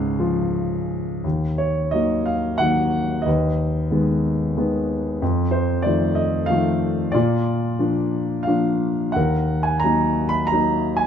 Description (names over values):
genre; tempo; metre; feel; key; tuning
classical, lyrical solo piano; 91 BPM; 3/4; uneven beats, rubato; Eb minor; A4 = 441 Hz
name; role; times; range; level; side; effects
warm concert grand piano; solo; 0.0-11.1 s; C#2 to Cb6; -19 LUFS; equal; none
room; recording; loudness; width
moderate studio reverb, RT60 0.6 s; dark, warm production, lossy compression artefacts; -19 LUFS; side -8 dB against mid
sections
0.0-1.2 A section; 1.2-11.1 B section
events
none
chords
0.0 C#; 1.2 Ebm; 3.3 Abm/Eb; 5.2 F7; 7.1 Bb; 9.2 Ebm